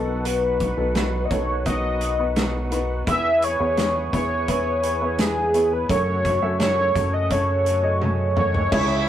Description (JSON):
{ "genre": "piano-driven pop", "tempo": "85 BPM", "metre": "4/4", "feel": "straight", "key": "unclear", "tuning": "A4 = 440 Hz", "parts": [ { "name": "warm velvety synth lead", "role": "melody", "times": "0.0-9.1 s", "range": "G#4 to E5", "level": "-22 LUFS", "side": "equal", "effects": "chorus" }, { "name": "warm baby grand piano", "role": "accompaniment", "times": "0.0-9.1 s", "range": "B2 to E5", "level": "-30 LUFS", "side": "left 3 dB", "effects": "none" }, { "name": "overdriven tonewheel organ", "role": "sustained chords", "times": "0.0-9.1 s", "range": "C#3 to G#4", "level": "-34 LUFS", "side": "equal", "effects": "chorus vibrato, slow rotary speaker" }, { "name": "direct-recorded clean electric guitar", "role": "riff", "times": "0.0-9.1 s", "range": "F#2 to A4", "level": "-34 LUFS", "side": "right 4 dB", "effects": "none" }, { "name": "chorused synth bass", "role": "bass", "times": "0.0-9.1 s", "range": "B1 to F#2", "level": "-26 LUFS", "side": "equal", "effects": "none" }, { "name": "loose indie drum kit", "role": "drums", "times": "0.3-8.9 s", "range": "crash cymbal, hi-hat, kick drum, snare drum, toms", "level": "-26 LUFS", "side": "equal", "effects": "none" }, { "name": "warm studio violin section", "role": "second line", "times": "8.7-9.1 s", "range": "E4 to E5", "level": "-26 LUFS", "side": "right 3 dB", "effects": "none" } ], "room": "light reverb", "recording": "rough rehearsal-room recording", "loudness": "-19 LUFS", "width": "side -11 dB against mid", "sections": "0.0-8.7 A section", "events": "drum fill 8.0-8.7", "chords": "0.0 B; 3.1 E; 5.9 F#m" }